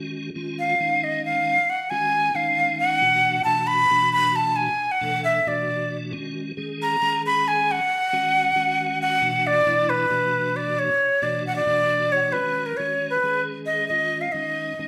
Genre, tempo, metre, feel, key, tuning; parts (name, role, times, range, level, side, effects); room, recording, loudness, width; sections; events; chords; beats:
jazz; 270 BPM (eighths); 7/8; straight; A4 = 442 Hz
tonewheel organ; accompaniment; 0.0-14.9 s; B2 to F#5; -33 LUFS; equal; slow rotary speaker, chorus vibrato
breathy bright jazz flute; melody; 0.6-14.9 s; A#4 to B5; -22 LUFS; equal
moderate large studio reverb, RT60 1.1 s; band playing live in one room; -22 LUFS; mono
0.0-12.3 A section; 12.3-14.9 B section
tonewheel organ fill 11.7-12.3
0.0 G#5; 3.0 Bm7; 6.1 G#5; 9.2 Bm9; 12.3 G#m7; 13.9 C#add9
0.13 0.35 0.58 0.80 1.02 1.24 | 1.47 1.69 1.91 2.13 2.35 2.58 2.80 | 3.02 3.24 3.46 3.69 3.91 4.13 4.35 | 4.58 4.80 5.02 5.24 5.46 5.68 5.91 | 6.13 6.35 6.57 6.79 7.01 7.24 7.46 | 7.68 7.90 8.12 8.35 8.57 8.79 9.01 | 9.23 9.46 9.68 9.90 10.12 10.34 10.56 | 10.79 11.01 11.23 11.45 11.68 11.90 12.12 | 12.34 12.56 12.79 13.01 13.23 13.45 13.68 | 13.90 14.12 14.35 14.57 14.79